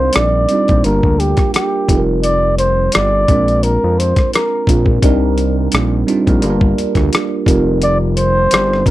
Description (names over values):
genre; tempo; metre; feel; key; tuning
R&B, neo-soul; 86 BPM; 4/4; swing 53% on 16ths; unclear; A4 = 443 Hz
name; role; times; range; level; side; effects
breathy flugelhorn; melody; 0.0-8.9 s; G4 to D5; -15 LUFS; equal; slapback echo
tine electric piano; accompaniment; 0.0-8.9 s; G3 to F5; -17 LUFS; right 2 dB; phaser
fat analog bass; bass; 0.0-8.9 s; F1 to F2; -16 LUFS; equal; none
boom bap sampler-style drum kit; drums; 0.1-8.9 s; hi-hat, kick drum, rim click; -15 LUFS; left 1 dB; overdrive
room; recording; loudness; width
little or no reverb; dry, close 1970s-style studio recording; -11 LUFS; side -15 dB against mid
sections
0.0-8.9 A section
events
none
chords
0.0 Cm9; 0.8 Gm7; 1.9 F9sus4; 3.3 Bb9; 5.0 Cm9; 6.4 Gm7; 7.5 F9sus4